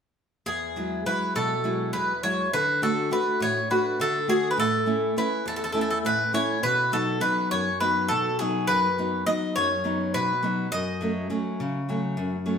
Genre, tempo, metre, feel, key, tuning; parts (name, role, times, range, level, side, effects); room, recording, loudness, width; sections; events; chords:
greek folk, Greek bouzouki band; 205 BPM (eighths); 7/8; straight; E major; A4 = 440 Hz
Greek bouzouki; melody; 0.5-11.3 s; G#4 to D#5; -25 LUFS; equal
nylon-string guitar; accompaniment; 0.5-12.6 s; E2 to F#4; -26 LUFS; left 1 dB
wet stone room reverb, RT60 1.1 s; band playing live in one room; -23 LUFS; side -7 dB against mid
0.5-12.6 A section
0.5 Eadd9; 2.5 D; 4.6 A; 6.6 B; 10.7 F#m